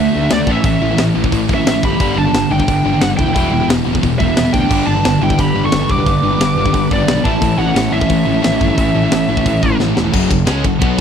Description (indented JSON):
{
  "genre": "heavy metal",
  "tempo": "177 BPM",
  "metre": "4/4",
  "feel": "straight",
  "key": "unclear",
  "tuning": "A4 = 439 Hz",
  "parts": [
    { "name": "high-gain lead guitar", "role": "melody", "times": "0.0-9.8 s", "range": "D5 to D6", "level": "-20 LUFS", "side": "equal", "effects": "distortion, tape echo" },
    { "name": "high-gain lead guitar", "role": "second line", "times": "0.0-9.8 s", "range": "A3 to B4", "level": "-22 LUFS", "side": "right 5 dB", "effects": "distortion" },
    { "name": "heavy high-gain guitar", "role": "riff", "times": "0.0-11.0 s", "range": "E2 to C#4", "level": "-20 LUFS", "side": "left 13 dB", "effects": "distortion" },
    { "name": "scooped high-gain guitar", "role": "riff", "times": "0.0-11.0 s", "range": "E2 to C#4", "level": "-20 LUFS", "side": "right 11 dB", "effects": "distortion" },
    { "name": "sludgy distorted guitar", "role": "riff", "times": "0.0-11.0 s", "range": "F#2 to F#4", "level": "-22 LUFS", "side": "equal", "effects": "overdrive" },
    { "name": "fuzz picked electric bass", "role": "bass", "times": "0.0-11.0 s", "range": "E1 to D2", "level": "-20 LUFS", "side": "equal", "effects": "overdrive" },
    { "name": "tight metal drum kit", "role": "drums", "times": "0.3-11.0 s", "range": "crash cymbal, hi-hat, kick drum, ride cymbal, snare drum", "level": "-18 LUFS", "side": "equal", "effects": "none" },
    { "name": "warm analog pad", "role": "sustained chords", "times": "4.7-11.0 s", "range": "E4 to B5", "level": "-28 LUFS", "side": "right 1 dB", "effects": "chorus" }
  ],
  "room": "little or no reverb",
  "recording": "dry, close 1970s-style studio recording",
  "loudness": "-12 LUFS",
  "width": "side -8 dB against mid",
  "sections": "0.0-10.1 A section",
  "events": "drum fill 9.8-10.1",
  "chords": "0.5 A; 2.0 Em; 7.3 A; 10.1 F#m"
}